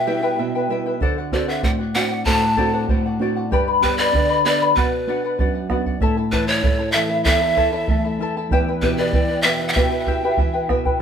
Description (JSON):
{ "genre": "andean folk, Andean ensemble", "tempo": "96 BPM", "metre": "2/4", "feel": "straight", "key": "unclear", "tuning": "A4 = 440 Hz", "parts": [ { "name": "breathy pan flute", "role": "melody", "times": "0.0-10.7 s", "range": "B4 to A5", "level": "-21 LUFS", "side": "equal", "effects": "tape echo" }, { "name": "charango", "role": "accompaniment", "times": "0.0-11.0 s", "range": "E4 to B5", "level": "-22 LUFS", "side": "left 3 dB", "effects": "none" }, { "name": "nylon-string guitar", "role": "accompaniment", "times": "0.0-11.0 s", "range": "E2 to G4", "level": "-24 LUFS", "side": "right 2 dB", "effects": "none" }, { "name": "bombo", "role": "percussion", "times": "1.0-11.0 s", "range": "none", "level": "-22 LUFS", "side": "right 2 dB", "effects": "none" } ], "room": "wet studio reverb, RT60 0.5 s", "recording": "heard from further back in the room", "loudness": "-17 LUFS", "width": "side -8 dB against mid", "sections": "0.0-6.0 A section; 6.0-11.0 A section", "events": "none", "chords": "0.0 Em; 1.0 D7; 3.5 G; 4.8 Bm; 6.0 A; 8.5 Em" }